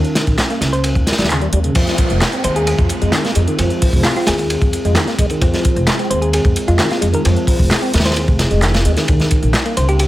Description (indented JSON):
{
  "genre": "breakbeat, breaks",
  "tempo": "131 BPM",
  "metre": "4/4",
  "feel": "straight",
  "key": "F minor",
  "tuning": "A4 = 436 Hz",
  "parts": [
    { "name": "dark analog pad", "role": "sustained chords", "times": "0.0-10.1 s", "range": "G3 to Bb4", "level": "-24 LUFS", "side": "equal", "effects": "chorus, phaser, vintage 12-bit sampler grit, sidechain pumping" },
    { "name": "tonewheel organ", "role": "riff", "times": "0.0-9.8 s", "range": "Db3 to C4", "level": "-21 LUFS", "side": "equal", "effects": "overdrive, fast rotary speaker, tube saturation, vintage 12-bit sampler grit, tape echo" },
    { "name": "punchy analog drum machine", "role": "drums", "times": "0.0-10.1 s", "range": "handclaps, hi-hat", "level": "-24 LUFS", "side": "equal", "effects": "none" },
    { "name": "crunchy breakbeat drum kit", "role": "drums", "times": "0.2-10.1 s", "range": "crash cymbal, hi-hat, kick drum, ride cymbal, snare drum", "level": "-17 LUFS", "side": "equal", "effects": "none" },
    { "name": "upright bass", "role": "bass", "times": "0.3-10.1 s", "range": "F1 to F2", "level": "-17 LUFS", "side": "equal", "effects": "none" },
    { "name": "thumb-piano-like synth pluck", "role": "melody", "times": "0.7-10.1 s", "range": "F4 to C5", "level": "-22 LUFS", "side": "equal", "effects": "chorus, phaser, AM radio sound, tape echo" },
    { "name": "downlifter", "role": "sound effects", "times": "1.8-5.4 s", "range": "none", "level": "-28 LUFS", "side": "left 1 dB", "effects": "none" }
  ],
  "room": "small room reverb",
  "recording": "none",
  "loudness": "-13 LUFS",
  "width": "side -15 dB against mid",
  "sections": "0.0-1.8 A section; 1.8-10.1 B section",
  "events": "drop 1.8-10.1",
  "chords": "0.0 Eb; 1.8 Fm; 9.1 Eb"
}